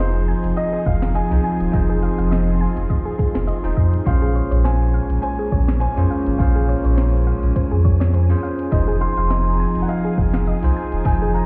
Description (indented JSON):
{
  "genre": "sunset chillout",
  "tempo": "103 BPM",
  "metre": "4/4",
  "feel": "swing 54% on 16ths",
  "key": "Bb minor",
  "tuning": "A4 = 440 Hz",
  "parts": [
    { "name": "warm concert grand piano", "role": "melody", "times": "0.0-11.5 s", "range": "C5 to C6", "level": "-31 LUFS", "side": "equal", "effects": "delay" },
    { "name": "barky tine electric piano", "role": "accompaniment", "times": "0.0-11.5 s", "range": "Db4 to C5", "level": "-29 LUFS", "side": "equal", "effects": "delay" },
    { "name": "rich chamber string section", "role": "sustained chords", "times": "0.0-11.5 s", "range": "F3 to Ab4", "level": "-28 LUFS", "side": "equal", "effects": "none" },
    { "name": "soft round pluck", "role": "arpeggios", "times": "0.0-11.5 s", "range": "Ab4 to Ab5", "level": "-34 LUFS", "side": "equal", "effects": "chorus, cassette tape, delay" },
    { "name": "warm sub bass", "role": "bass", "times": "0.0-11.4 s", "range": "Eb1 to F2", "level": "-21 LUFS", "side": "equal", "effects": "none" },
    { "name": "smooth R&B drum kit", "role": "drums", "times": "0.0-11.5 s", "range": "hi-hat, shaker, snare drum", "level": "-31 LUFS", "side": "equal", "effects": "small room ambience" },
    { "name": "wind-like tuned noise texture", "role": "texture", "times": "0.1-11.5 s", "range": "Ab5 to C6", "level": "-46 LUFS", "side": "equal", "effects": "none" },
    { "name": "electronic kick drum", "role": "drums", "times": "0.9-11.2 s", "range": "none", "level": "-22 LUFS", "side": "equal", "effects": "small room ambience" }
  ],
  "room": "light reverb",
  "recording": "heard muffled through a wall, stone room reverb, EQ, nothing above 7.8 kHz",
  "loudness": "-19 LUFS",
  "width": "mono",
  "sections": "0.0-11.5 A section",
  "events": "none",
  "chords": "0.0 Fm7; 4.1 Bbm9; 8.7 Fm7"
}